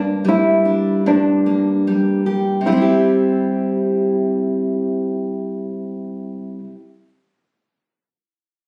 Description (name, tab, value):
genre	pop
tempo	75 BPM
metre	4/4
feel	swing 55% on 16ths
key	C mixolydian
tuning	A4 = 440 Hz
part	fingerpicked steel-string acoustic guitar	accompaniment	0.0-6.8 s	G2 to Bb4	-20 LUFS	equal	none
part	flamenco guitar	melody	0.3-6.6 s	D4 to E4	-20 LUFS	equal	none
room	light reverb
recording	recorded on a phone in the room, studio reverb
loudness	-18 LUFS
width	mono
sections	0.0-2.6 A section; 2.6-5.9 B section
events	none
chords	0.0 Gm; 2.6 C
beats	0.24 1.04 1.84 | 2.65 3.45 4.25 5.05